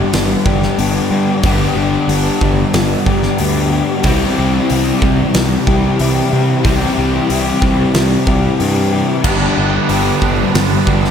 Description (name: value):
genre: rock, shoegaze and dream pop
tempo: 92 BPM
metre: 4/4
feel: straight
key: G major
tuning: A4 = 440 Hz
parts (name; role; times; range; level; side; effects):
- cranked stack guitar; riff; 0.0-11.1 s; G2 to C4; -18 LUFS; right 1 dB; overdrive
- crunchy overdriven guitar; riff; 0.0-11.1 s; G2 to G4; -17 LUFS; left 5 dB; ensemble chorus
- fuzz picked electric bass; bass; 0.1-11.1 s; G1 to C3; -18 LUFS; right 1 dB; overdrive
- huge arena drum kit; drums; 0.1-11.1 s; crash cymbal, hi-hat, kick drum, snare drum; -19 LUFS; equal; none
- biting overdriven guitar; riff; 9.2-11.1 s; G2 to D4; -22 LUFS; right 9 dB; reverse reverb
room: moderate huge ambient reverb, RT60 6.3 s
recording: dreamy mix soaked in reverb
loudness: -12 LUFS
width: side -8 dB against mid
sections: 0.0-11.1 A section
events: none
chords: 0.0 G; 4.0 C; 9.3 G